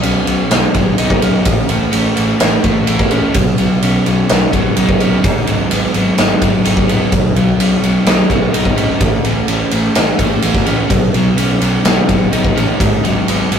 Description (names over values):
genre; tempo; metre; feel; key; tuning
rock, shoegaze and dream pop; 127 BPM; 4/4; straight; B mixolydian; A4 = 444 Hz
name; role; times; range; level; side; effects
crunchy overdriven guitar; riff; 0.0-13.6 s; G#2 to E4; -16 LUFS; equal; none
fuzz picked electric bass; bass; 0.0-13.6 s; G#1 to B1; -18 LUFS; equal; overdrive
huge arena drum kit; drums; 0.0-13.6 s; kick drum, ride cymbal, snare drum; -15 LUFS; equal; none
room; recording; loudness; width
wet small room reverb, RT60 0.6 s; rough rehearsal-room recording, tube saturation; -11 LUFS; side -7 dB against mid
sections
0.0-13.6 A section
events
none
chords
0.0 Badd9; 1.5 A; 3.3 Badd9; 5.2 G#m7; 7.1 Badd9; 9.0 A; 10.9 Badd9; 12.8 G#m7